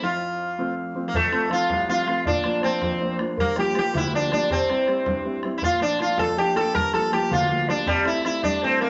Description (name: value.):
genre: celtic folk, Celtic jig.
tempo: 107 BPM (dotted quarters).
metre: 6/8.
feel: straight.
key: F major.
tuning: A4 = 441 Hz.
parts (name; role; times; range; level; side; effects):
sitar; melody; 0.0-8.9 s; G3 to Bb4; -26 LUFS; equal; none.
warm upright piano; accompaniment; 0.0-8.9 s; C2 to E4; -30 LUFS; equal; none.
wooden flute; second line; 1.1-8.9 s; G4 to Bb5; -29 LUFS; equal; none.
bodhran; percussion; 1.1-8.9 s; none; -35 LUFS; equal; none.
room: wet studio reverb, RT60 0.6 s.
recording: nothing above 7.8 kHz.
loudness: -23 LUFS.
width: mono.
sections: 0.0-1.1 A section; 1.1-8.9 A section.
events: none.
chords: 0.0 F; 2.3 Bb; 3.4 Gm7; 4.5 C; 5.6 Bb; 6.8 Gm7; 7.9 C6.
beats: | 0.02 0.58 | 1.14 1.70 | 2.26 2.82 | 3.38 3.94 | 4.50 5.07 | 5.63 6.19 | 6.75 7.31 | 7.88 8.44.